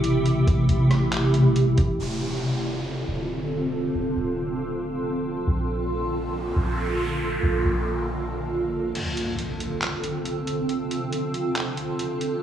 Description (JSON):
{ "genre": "hip hop, atmospheric cloud-rap", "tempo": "138 BPM", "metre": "4/4", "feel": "half-time", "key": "D minor", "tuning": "A4 = 440 Hz", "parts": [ { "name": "granular cloud pad", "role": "sustained chords", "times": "0.0-12.4 s", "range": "C3 to A4", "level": "-24 LUFS", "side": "right 1 dB", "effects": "built-in reverb, analog chorus, sidechain pumping, low-pass filter" }, { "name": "soft 808-style bass", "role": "bass", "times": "0.0-8.9 s", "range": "C1 to Bb1", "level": "-28 LUFS", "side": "equal", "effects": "none" }, { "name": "lo-fi sampler-style drum kit", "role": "drums", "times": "0.0-1.9, 9.0-12.3 s", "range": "crash cymbal, handclaps, hi-hat, kick drum, rim click", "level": "-30 LUFS", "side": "equal", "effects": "none" }, { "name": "downlifter, noise sweep and impact", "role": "sound effects", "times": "2.0-10.7 s", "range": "none", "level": "-35 LUFS", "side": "equal", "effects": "none" } ], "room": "wet lush hall reverb, RT60 2.1 s", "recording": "dreamy mix soaked in reverb, small room ambience", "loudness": "-22 LUFS", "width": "side -10 dB against mid", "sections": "0.0-2.0 A section; 2.0-9.0 B section; 9.0-12.4 C section", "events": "filter sweep on ambient pad 2.0-9.0; noise sweep 5.8-9.0; break 9.0-12.4; impact 9.0-10.7", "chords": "0.0 Am7; 2.0 Dm7; 5.5 Bbmaj7; 9.0 Dm7", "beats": "| 0.26 0.69 1.12 1.56 | 2.00 2.43 2.87 3.30 | 3.73 4.17 4.60 5.04 | 5.47 5.91 6.34 6.78 | 7.21 7.65 8.08 8.52 | 8.95 9.39 9.82 10.26 | 10.69 11.12 11.56 11.99" }